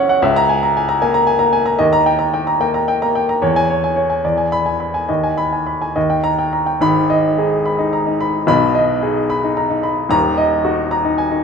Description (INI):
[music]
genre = classical, virtuoso piano study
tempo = 68-78 BPM (dotted quarters)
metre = 6/8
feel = rubato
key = G# minor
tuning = A4 = 440 Hz
[part]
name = clear baby grand piano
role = solo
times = 0.0-11.4 s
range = D#1 to B5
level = -14 LUFS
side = equal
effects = none
[sound]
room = wet recital hall reverb, RT60 1.7 s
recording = minimal, uncompressed stereo recording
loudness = -14 LUFS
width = side -6 dB against mid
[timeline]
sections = 0.0-6.8 A section; 6.8-11.4 B section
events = none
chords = 0.2 A#m7b5/C#; 1.8 D#; 3.4 C#m/E; 4.2 E7; 5.1 G#m/D#; 6.0 D#; 6.8 G#m; 8.5 G#m/B; 10.1 D#m